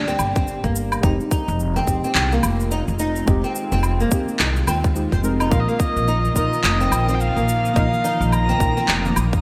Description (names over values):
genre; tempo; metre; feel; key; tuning
organic downtempo; 107 BPM; 4/4; swing 60% on 16ths; unclear; A4 = 440 Hz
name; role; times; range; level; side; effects
deep mellow chord stab; accompaniment; 0.0-9.4 s; G3 to Bb4; -30 LUFS; equal; chorus, sidechain pumping, digital delay
bowed-like drone; sustained chords; 0.0-9.4 s; D3 to G4; -32 LUFS; equal; built-in reverb, sidechain pumping
flamenco guitar; arpeggios; 0.0-9.4 s; Bb3 to C5; -27 LUFS; equal; lush chorus, digital delay
upright bass; bass; 0.0-9.4 s; F1 to Eb2; -24 LUFS; equal; none
electronic cabasa, woodblock and handclaps; drums; 0.1-9.4 s; none; -27 LUFS; equal; overdrive, gated reverb
electronic kick drum; drums; 0.4-9.4 s; none; -23 LUFS; equal; overdrive
bright kamancheh; melody; 5.5-9.1 s; Eb5 to Bb5; -26 LUFS; equal; vintage 12-bit sampler grit, digital delay
twinkling granular texture; texture; 6.2-9.4 s; Eb3 to Eb6; -37 LUFS; equal; none
room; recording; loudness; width
moderate lush hall reverb, RT60 1.9 s, digital ambience; bright 1980s-style digital production; -20 LUFS; mono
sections
0.0-9.4 A section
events
none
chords
0.0 Gm; 1.0 Fm7; 5.5 Bbsus4